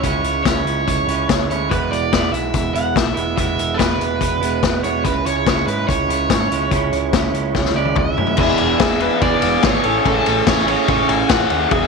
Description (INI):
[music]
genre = indie rock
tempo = 144 BPM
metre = 4/4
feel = straight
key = E mixolydian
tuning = A4 = 439 Hz
[part]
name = overdriven electric guitar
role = melody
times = 0.0-11.9 s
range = A4 to G#5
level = -21 LUFS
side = right 1 dB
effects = slapback echo
[part]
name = electric guitar through a small old amp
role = riff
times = 0.0-11.9 s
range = C#3 to D5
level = -22 LUFS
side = right 14 dB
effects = none
[part]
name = growling picked electric bass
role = bass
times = 0.0-11.9 s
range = E1 to G#2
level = -25 LUFS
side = equal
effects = overdrive
[part]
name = vintage drum kit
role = drums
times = 0.0-11.8 s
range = crash cymbal, hi-hat, kick drum, ride cymbal, snare drum, toms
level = -19 LUFS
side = left 6 dB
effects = none
[part]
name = tine electric piano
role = second line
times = 8.4-11.9 s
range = E4 to B4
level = -24 LUFS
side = left 12 dB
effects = medium stereo tremolo
[part]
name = combo organ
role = sustained chords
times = 8.4-11.9 s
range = E3 to G#4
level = -26 LUFS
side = right 14 dB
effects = none
[sound]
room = light reverb, small room reverb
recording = 1960s-style stereo with parts hard left and right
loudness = -15 LUFS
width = side -4 dB against mid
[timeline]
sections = 0.0-8.4 A section; 8.4-11.9 B section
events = drum fill 7.6-8.4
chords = 0.0 C#m; 1.7 E; 5.1 C#m; 8.4 E7; 9.8 Amaj7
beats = | 0.04 0.46 0.88 1.29 | 1.71 2.13 2.55 2.96 | 3.38 3.80 4.22 4.63 | 5.05 5.47 5.89 6.30 | 6.72 7.14 7.55 7.97 | 8.39 8.80 9.22 9.63 | 10.05 10.46 10.88 11.29 | 11.71